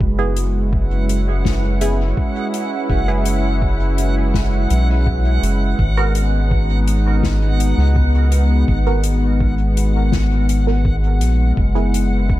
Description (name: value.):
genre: ambient dub.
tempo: 83 BPM.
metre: 4/4.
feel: straight.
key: unclear.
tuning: A4 = 438 Hz.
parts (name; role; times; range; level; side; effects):
warm analog pad; sustained chords; 0.0-12.4 s; G#3 to B4; -22 LUFS; left 1 dB; chorus.
round analog bass; bass; 0.0-12.4 s; F#1 to C#2; -16 LUFS; equal; none.
electronic kick drum; drums; 0.0-12.4 s; none; -20 LUFS; equal; none.
backwards swelling texture; texture; 0.9-11.6 s; F#5; -28 LUFS; right 2 dB; built-in reverb.
filtered dub chord stab; stabs; 0.2-12.0 s; B3 to A#4; -27 LUFS; right 3 dB; phaser, dub echo.
soft-mallet drum kit; drums; 0.4-12.1 s; hi-hat, snare drum; -28 LUFS; left 6 dB; dub echo.
room: small room ambience.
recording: echo-heavy mix.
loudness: -15 LUFS.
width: side -15 dB against mid.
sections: 0.0-11.6 A section.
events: none.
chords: 0.0 F#9sus4; 5.8 G#m7; 11.6 F#9sus4.